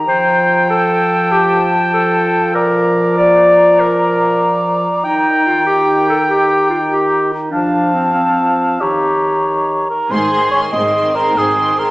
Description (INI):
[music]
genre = cinematic, heroic adventure film score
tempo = 96 BPM (dotted quarters)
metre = 12/8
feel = straight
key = unclear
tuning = A4 = 440 Hz
[part]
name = hollow concert flute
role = second line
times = 0.0-9.9 s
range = A5 to Bb5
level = -19 LUFS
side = left 1 dB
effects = none
[part]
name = mellow French horn section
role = sustained chords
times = 0.0-9.9 s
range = Eb3 to F3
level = -20 LUFS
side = equal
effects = none
[part]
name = mellow cor anglais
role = second line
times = 0.1-11.9 s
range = Ab4 to G5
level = -16 LUFS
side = equal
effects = none
[part]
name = warm clarinet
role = second line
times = 0.1-9.9 s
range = C4 to D5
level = -14 LUFS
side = equal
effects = none
[part]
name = warm symphonic violin section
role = melody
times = 10.1-11.9 s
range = C6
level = -24 LUFS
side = left 2 dB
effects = none
[part]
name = rich symphonic violin section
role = second line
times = 10.1-11.9 s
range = C4 to Ab4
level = -22 LUFS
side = equal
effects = none
[part]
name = warm symphonic viola section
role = accompaniment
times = 10.1-11.9 s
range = Eb3 to Ab4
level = -21 LUFS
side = right 1 dB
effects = none
[part]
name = warm studio cello section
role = bass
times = 10.1-11.9 s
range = Ab2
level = -25 LUFS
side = right 1 dB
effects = none
[part]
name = warm symphonic double bass section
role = bass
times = 10.1-11.9 s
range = Ab1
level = -30 LUFS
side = equal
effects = none
[sound]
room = wet recital hall reverb, RT60 1.7 s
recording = recorded in a church or concert hall, small speaker sound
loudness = -11 LUFS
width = side -20 dB against mid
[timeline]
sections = 0.0-10.1 A section; 10.1-11.9 B section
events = none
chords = 0.1 Fadd9; 5.0 Eb; 7.5 F; 8.8 Eb7; 10.1 Ab